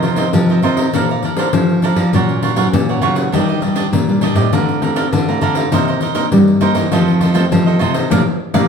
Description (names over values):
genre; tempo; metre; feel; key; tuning
samba and choro; 100 BPM; 4/4; straight; Bb major; A4 = 442 Hz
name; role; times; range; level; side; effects
cavaquinho; accompaniment; 0.0-8.6 s; D4 to Bb5; -20 LUFS; right 7 dB; none
nylon-string guitar; accompaniment; 0.0-8.6 s; F2 to C5; -19 LUFS; left 1 dB; none
nylon-string guitar; bass; 0.0-8.7 s; A2 to G3; -16 LUFS; equal; none
pandeiro; percussion; 0.0-8.7 s; none; -18 LUFS; left 4 dB; none
room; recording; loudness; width
wet studio reverb, RT60 0.9 s; heard from further back in the room; -12 LUFS; side -6 dB against mid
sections
0.0-8.7 A section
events
band accent 8.1-8.7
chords
0.0 F7sus4; 0.9 Bbmaj9; 2.1 Gbmaj7/Bb; 3.3 Ebmaj9; 4.5 Bbmaj9/D; 5.7 Cm9; 6.9 F7; 8.1 Bbmaj7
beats
0.34 | 0.94 1.54 2.14 2.73 | 3.33 3.93 4.53 5.13 | 5.73 6.32 6.92 7.52 | 8.12